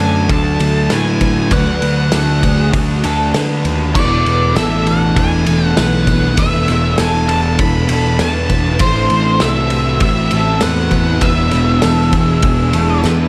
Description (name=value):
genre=rock, shoegaze and dream pop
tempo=99 BPM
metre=4/4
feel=straight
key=E mixolydian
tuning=A4 = 439 Hz
part: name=octave-fuzz lead guitar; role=melody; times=0.0-13.0 s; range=C5 to B5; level=-22 LUFS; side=equal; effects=distortion, analog delay
part: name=ethereal airy pad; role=sustained chords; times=0.6-13.3 s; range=D3 to A4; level=-29 LUFS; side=equal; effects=none
part: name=picked twelve-string acoustic guitar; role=arpeggios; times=0.0-13.3 s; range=A3 to C5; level=-26 LUFS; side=equal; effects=analog chorus, analog delay
part: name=electric guitar through a small old amp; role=riff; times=0.0-13.3 s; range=A2 to C#5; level=-24 LUFS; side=equal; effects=reverse reverb
part: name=thick fuzz guitar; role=riff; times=0.0-13.3 s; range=E2 to D4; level=-21 LUFS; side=equal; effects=distortion, subtle chorus
part: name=fuzz picked electric bass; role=bass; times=0.0-13.3 s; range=E1 to D3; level=-20 LUFS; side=equal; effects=overdrive
part: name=loose indie drum kit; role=drums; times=0.0-13.2 s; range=crash cymbal, kick drum, ride cymbal, snare drum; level=-21 LUFS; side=equal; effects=none
room=light reverb, small room reverb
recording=none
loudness=-14 LUFS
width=mono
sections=0.0-13.3 A section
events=drum fill 13.0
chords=0.0 Dmaj7; 4.0 E7sus4; 8.8 Am6; 11.2 E7